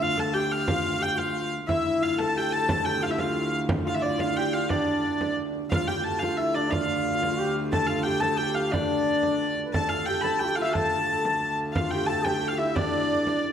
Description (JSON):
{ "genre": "medieval dance", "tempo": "119 BPM (dotted quarters)", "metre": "6/8", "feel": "straight", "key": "D minor", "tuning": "A4 = 440 Hz", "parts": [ { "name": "rich hurdy-gurdy", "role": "melody", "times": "0.0-13.4 s", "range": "D5 to B5", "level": "-27 LUFS", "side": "equal", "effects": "none" }, { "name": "mellow duduk", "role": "second line", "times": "0.0-13.4 s", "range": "D4 to B4", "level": "-30 LUFS", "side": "left 5 dB", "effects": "slapback echo" }, { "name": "rich viola da gamba", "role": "drone", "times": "0.0-13.5 s", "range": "D2", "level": "-32 LUFS", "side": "right 1 dB", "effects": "none" }, { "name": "frame drum", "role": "percussion", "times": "0.2-13.5 s", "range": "none", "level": "-32 LUFS", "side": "right 1 dB", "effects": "none" }, { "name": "concert harp", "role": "second line", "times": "1.7-13.5 s", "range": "D4 to A4", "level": "-31 LUFS", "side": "right 4 dB", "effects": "none" } ], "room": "wet recital hall reverb, RT60 1.6 s", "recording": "none", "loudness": "-23 LUFS", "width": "side -8 dB against mid", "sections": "0.0-5.7 A section; 5.7-13.5 B section", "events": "none", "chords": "none", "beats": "0.17 | 0.67 1.17 | 1.68 2.18 | 2.69 3.19 | 3.69 4.20 | 4.70 5.21 | 5.71 6.21 | 6.72 7.22 | 7.73 8.23 | 8.73 9.24 | 9.74 10.24 | 10.75 11.25 | 11.76 12.26 | 12.76 13.27" }